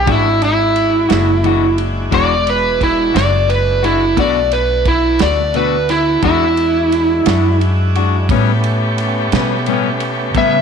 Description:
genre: slow blues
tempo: 58 BPM (dotted quarters)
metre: 12/8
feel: straight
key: E mixolydian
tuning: A4 = 440 Hz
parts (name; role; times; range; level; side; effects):
- overdriven slide guitar; melody; 0.0-10.6 s; E4 to E5; -14 LUFS; right 2 dB; none
- bright tonewheel organ; sustained chords; 0.0-10.6 s; G#3 to G4; -23 LUFS; equal; slow rotary speaker, overdrive
- upright bass; bass; 0.0-10.6 s; E1 to C#3; -18 LUFS; equal; none
- clean electric guitar; accompaniment; 0.1-10.6 s; A2 to F#4; -20 LUFS; left 13 dB; harmonic tremolo
- warm soul drum kit; drums; 0.1-10.5 s; kick drum, ride cymbal, snare drum; -23 LUFS; right 4 dB; none
room: moderate echo chamber reverb, RT60 1.7 s, small room ambience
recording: 1960s-style stereo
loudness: -12 LUFS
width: side -6 dB against mid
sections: 0.0-10.6 A section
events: electric slide guitar solo 0.0-10.6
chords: 0.1 E9; 4.2 Bm7; 6.2 E9; 8.3 A9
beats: | 0.08 1.11 2.13 3.16 | 4.18 5.21 6.24 7.27 | 8.29 9.32 10.35

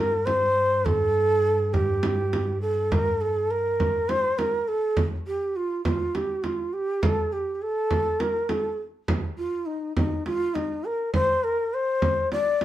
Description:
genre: Turkish makam ensemble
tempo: 204 BPM (eighths)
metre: 7/8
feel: straight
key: G makam ussak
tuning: A4 = 440 Hz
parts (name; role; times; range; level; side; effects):
- breathy mellow shakuhachi; melody; 0.0-12.6 s; Eb4 to D5; -24 LUFS; equal; none
- muted cello; drone; 0.0-3.9 s; G2; -30 LUFS; equal; none
- frame drum; percussion; 0.3-12.6 s; none; -27 LUFS; right 1 dB; none
room: moderate studio reverb, RT60 0.7 s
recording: band playing live in one room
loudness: -22 LUFS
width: side -13 dB against mid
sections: 0.0-3.8 A section; 3.8-12.6 B section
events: none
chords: none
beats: 0.26 0.56 0.85 1.15 1.44 | 1.73 2.03 2.32 2.61 2.91 3.20 3.50 | 3.79 4.08 4.38 4.67 4.97 5.26 5.55 | 5.85 6.14 6.44 6.73 7.03 7.32 7.61 | 7.91 8.20 8.50 8.79 9.09 9.38 9.67 | 9.97 10.26 10.56 10.85 11.14 11.44 11.73 | 12.03 12.32 12.62

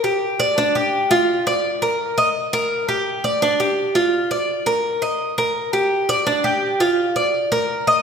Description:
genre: latin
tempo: 168 BPM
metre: 4/4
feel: straight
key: unclear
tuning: A4 = 440 Hz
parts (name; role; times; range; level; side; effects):
- Cuban tres; solo; 0.0-8.0 s; D4 to Eb5; -17 LUFS; equal; none
room: wet scoring stage reverb, RT60 2.0 s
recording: recorded in a church or concert hall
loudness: -17 LUFS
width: side -6 dB against mid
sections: 0.0-8.0 A section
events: none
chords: none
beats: 0.22 | 0.57 0.93 1.28 1.64 | 2.00 2.35 2.71 3.06 | 3.42 3.78 4.13 4.49 | 4.84 5.20 5.56 5.91 | 6.27 6.62 6.98 7.34 | 7.69

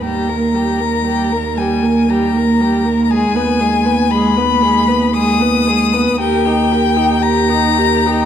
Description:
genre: classical, slow romantic movement for string quartet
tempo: 58 BPM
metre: 3/4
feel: rubato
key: Eb major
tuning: A4 = 440 Hz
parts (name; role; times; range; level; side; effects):
- warm violin; melody; 0.0-8.3 s; G5 to Eb6; -17 LUFS; left 8 dB; none
- rich violin; second line; 0.0-8.3 s; G4 to Cb5; -22 LUFS; left 3 dB; none
- warm viola; accompaniment; 0.0-8.3 s; G3 to G4; -18 LUFS; right 2 dB; none
- warm cello; bass; 0.0-8.3 s; Eb2; -16 LUFS; right 3 dB; none
room: wet recital hall reverb, RT60 1.5 s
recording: dark, warm production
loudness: -12 LUFS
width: side -9 dB against mid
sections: 0.0-8.3 A section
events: none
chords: 0.0 Eb; 3.1 Abm/Eb; 6.2 Eb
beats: | 0.03 1.05 2.08 | 3.10 4.10 5.14 | 6.19 7.22

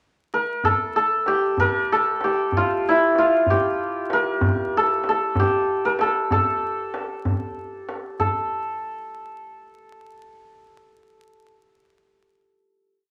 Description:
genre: Persian modal ensemble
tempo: 63 BPM (dotted quarters)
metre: 6/8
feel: straight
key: A dastgah shur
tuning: A4 = 439 Hz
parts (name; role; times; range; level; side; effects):
- santur; melody; 0.3-11.5 s; E4 to Bb4+45c; -23 LUFS; equal; none
- tombak; percussion; 0.6-8.5 s; none; -28 LUFS; equal; none
room: wet small room reverb, RT60 0.6 s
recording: vinyl crackle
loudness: -22 LUFS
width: mono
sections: 0.0-0.6 pickup bar; 0.6-8.2 A section; 8.2-12.0 final note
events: none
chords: none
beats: | 0.63 1.57 | 2.52 3.46 | 4.41 5.36 | 6.30 7.25 | 8.19 9.14 | 10.09 11.03

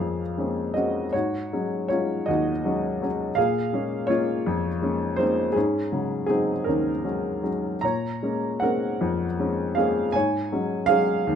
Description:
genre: classical, lyrical solo piano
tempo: 54 BPM (dotted quarters)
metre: 6/8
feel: rubato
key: Bb minor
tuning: A4 = 439 Hz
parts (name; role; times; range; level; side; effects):
- dark baby grand piano; solo; 0.0-11.4 s; Eb2 to Bb5; -22 LUFS; equal; none
room: light reverb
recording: close, detailed microphones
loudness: -22 LUFS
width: side -8 dB against mid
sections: 0.0-11.4 A section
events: none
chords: 0.0 Bbm9; 1.1 Ab7sus4; 3.4 Bbm9; 5.6 Ab7sus4; 7.8 Bbm9; 10.1 Ab7sus4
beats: | 1.14 2.27 | 3.37 4.46 | 5.56 6.67 | 7.83 9.01 | 10.15 11.26

